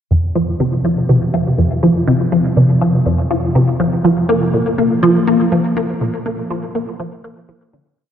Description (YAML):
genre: ambient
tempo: 122 BPM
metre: 4/4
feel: straight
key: unclear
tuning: A4 = 440 Hz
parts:
  - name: resonant blip pluck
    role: solo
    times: 0.1-7.9 s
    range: F2 to Bb3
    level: -13 LUFS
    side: equal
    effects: phaser, ensemble chorus, tape echo
room: wet cathedral reverb, RT60 5.1 s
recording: in a vast, echoing space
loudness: -13 LUFS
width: side -9 dB against mid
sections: 0.1-8.0 A section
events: fade-out 5.4-8.0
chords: none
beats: | 0.11 0.60 1.09 1.58 | 2.08 2.57 3.06 3.55 | 4.04 4.54 5.03 5.52 | 6.01 6.50 7.00 7.49